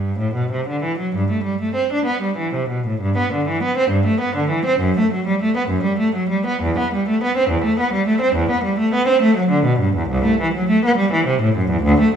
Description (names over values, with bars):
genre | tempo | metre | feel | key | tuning
classical, baroque-style suite movement for unaccompanied cello | 62-71 BPM (dotted quarters) | 12/8 | rubato | G major | A4 = 440 Hz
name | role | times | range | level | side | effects
clear cello | solo | 0.0-12.1 s | C2 to D4 | -16 LUFS | right 1 dB | none
room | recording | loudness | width
moderate recital hall reverb, RT60 1.6 s | none | -16 LUFS | side -8 dB against mid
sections
0.0-3.0 A section; 3.0-12.2 B section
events
none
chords
none